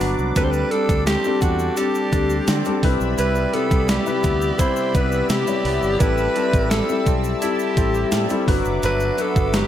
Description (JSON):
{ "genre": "1980s-style pop", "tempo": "85 BPM", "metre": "4/4", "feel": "straight", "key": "unclear", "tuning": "A4 = 440 Hz", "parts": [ { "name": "warm concert grand piano", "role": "accompaniment", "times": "0.0-9.7 s", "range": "C3 to B5", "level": "-23 LUFS", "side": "left 4 dB", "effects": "none" }, { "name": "brassy analog pad", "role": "sustained chords", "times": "0.0-9.7 s", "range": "B4 to E6", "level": "-30 LUFS", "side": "equal", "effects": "chorus" }, { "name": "twangy electric guitar", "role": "riff", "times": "0.0-9.7 s", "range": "F#3 to A4", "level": "-30 LUFS", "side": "right 8 dB", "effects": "wide subtle chorus" }, { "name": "fretless electric bass", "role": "bass", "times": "0.0-9.6 s", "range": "F#1 to D3", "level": "-24 LUFS", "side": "right 1 dB", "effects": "none" }, { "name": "clean 12-bit digital drum machine", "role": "drums", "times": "0.0-9.7 s", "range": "hi-hat, kick drum, snare drum, tambourine", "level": "-22 LUFS", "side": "right 1 dB", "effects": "overdrive, gated reverb" }, { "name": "egg shaker", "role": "percussion", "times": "0.0-9.7 s", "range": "none", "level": "-40 LUFS", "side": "left 9 dB", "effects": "none" }, { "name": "breathy alto saxophone", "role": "melody", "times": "0.4-9.7 s", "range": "F#4 to C5", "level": "-23 LUFS", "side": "equal", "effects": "none" } ], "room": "light reverb", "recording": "none", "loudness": "-17 LUFS", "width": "side -11 dB against mid", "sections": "0.0-9.7 A section", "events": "none", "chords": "0.4 D7sus4; 2.8 Cmaj7; 6.0 Am7; 8.5 Gmaj7" }